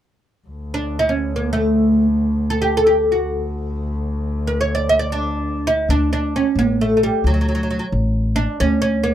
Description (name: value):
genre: persian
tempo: free time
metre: none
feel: none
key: D dastgah chahargah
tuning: A4 = 440 Hz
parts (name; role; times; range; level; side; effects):
- clear double bass; drone; 0.5-5.9 s; D2; -24 LUFS; left 1 dB; none
- oud; melody; 0.7-9.1 s; F#3 to Eb5+45c; -18 LUFS; right 1 dB; none
- upright bass; bass; 5.9-9.1 s; A1 to D2; -19 LUFS; left 1 dB; none
room: little or no reverb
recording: dry, close 1970s-style studio recording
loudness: -16 LUFS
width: side -11 dB against mid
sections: 0.5-5.9 A section; 5.9-9.1 B section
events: none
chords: none